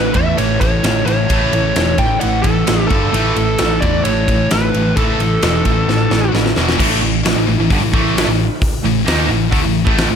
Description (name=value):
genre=hard rock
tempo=131 BPM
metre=4/4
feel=straight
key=A mixolydian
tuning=A4 = 440 Hz
part: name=high-gain lead guitar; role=melody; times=0.0-6.3 s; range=A4 to G5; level=-19 LUFS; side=equal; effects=distortion, tape echo
part: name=distorted electric guitar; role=riff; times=0.0-10.2 s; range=E2 to D#4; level=-22 LUFS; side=right 11 dB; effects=overdrive
part: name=distorted electric guitar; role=riff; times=0.0-10.2 s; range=G2 to D#4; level=-21 LUFS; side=equal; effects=distortion
part: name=heavy high-gain guitar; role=riff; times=0.0-10.2 s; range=E2 to D#4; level=-22 LUFS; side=left 14 dB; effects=distortion
part: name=picked electric bass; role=bass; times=0.0-10.2 s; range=E1 to E2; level=-19 LUFS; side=equal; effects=none
part: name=huge arena drum kit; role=drums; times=0.1-10.1 s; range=crash cymbal, hi-hat, kick drum, ride cymbal, snare drum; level=-18 LUFS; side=equal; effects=none
room=light reverb, small room ambience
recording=none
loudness=-12 LUFS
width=side -7 dB against mid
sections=0.0-6.8 A section; 6.8-10.2 B section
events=drum fill 5.9-6.8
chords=0.0 A; 2.9 G5; 3.1 A5; 6.6 E5; 6.8 A5